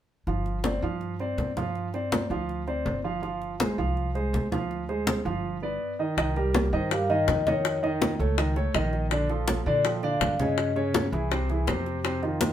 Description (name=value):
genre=Afro-Cuban jazz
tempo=163 BPM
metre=4/4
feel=straight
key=C minor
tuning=A4 = 440 Hz
part: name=warm concert grand piano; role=accompaniment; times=0.3-12.5 s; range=C3 to F5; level=-28 LUFS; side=right 2 dB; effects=none
part: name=upright bass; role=bass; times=0.3-12.5 s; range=G1 to Bb2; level=-31 LUFS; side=equal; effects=none
part: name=congas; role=percussion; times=0.3-12.5 s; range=none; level=-30 LUFS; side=left 1 dB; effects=none
part: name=bongos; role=percussion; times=6.2-12.5 s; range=none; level=-31 LUFS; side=left 6 dB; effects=none
part: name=vibraphone with medium mallets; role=melody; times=6.7-10.7 s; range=C5 to G5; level=-28 LUFS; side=left 4 dB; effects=none
room=moderate studio reverb, RT60 0.6 s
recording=band playing live in one room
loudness=-24 LUFS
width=side -10 dB against mid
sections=0.3-6.2 A section; 6.2-12.5 B section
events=none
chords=0.3 G7sus4; 3.2 Fmadd9/G; 5.4 G7; 6.2 Cm7; 7.6 Faug7; 9.1 Bbmaj7; 10.6 Eb13b9; 11.3 Caug